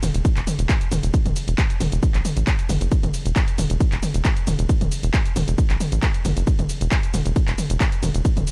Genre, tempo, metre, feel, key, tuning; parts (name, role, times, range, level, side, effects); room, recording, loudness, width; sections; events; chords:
driving peak-time techno; 135 BPM; 4/4; straight; A4 = 439 Hz
tight sequencer bass; bass; 0.0-8.4 s; D1 to A1; -25 LUFS; equal; tube saturation, sidechain pumping
techno drum kit; drums; 0.0-8.5 s; handclaps, hi-hat, ride cymbal, shaker, toms; -28 LUFS; equal
electronic kick drum; drums; 0.2-8.3 s; -23 LUFS; equal
little or no reverb; dark, warm production; -21 LUFS; mono
0.0-8.5 A section